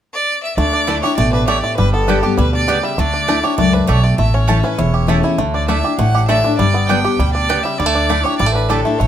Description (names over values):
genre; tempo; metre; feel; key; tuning
bluegrass; 200 BPM; 4/4; straight; unclear; A4 = 440 Hz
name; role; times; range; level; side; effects
clear fiddle; melody; 0.1-9.1 s; G4 to G5; -20 LUFS; equal; none
picked steel-string acoustic guitar; accompaniment; 0.6-9.1 s; E2 to G4; -18 LUFS; left 4 dB; none
bluegrass banjo; arpeggios; 0.6-9.1 s; G3 to G4; -20 LUFS; right 4 dB; none
upright bass; bass; 0.6-9.1 s; E1 to D2; -18 LUFS; equal; none
mandolin; stabs; 0.9-8.8 s; A3 to A5; -22 LUFS; right 4 dB; none
room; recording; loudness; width
light reverb; close, detailed microphones; -13 LUFS; side -10 dB against mid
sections
0.6-9.1 A section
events
none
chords
0.0 N.C.; 0.6 Dsus2; 1.8 G; 3.0 Dsus2; 4.2 A; 5.4 Dsus2; 6.6 G; 7.8 Dsus2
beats
0.28 | 0.57 0.88 1.18 1.48 | 1.78 2.08 2.38 2.68 | 2.98 3.28 3.58 3.88 | 4.18 4.48 4.79 5.09 | 5.39 5.69 5.99 6.29 | 6.59 6.89 7.19 7.50 | 7.80 8.10 8.40 8.70 | 9.00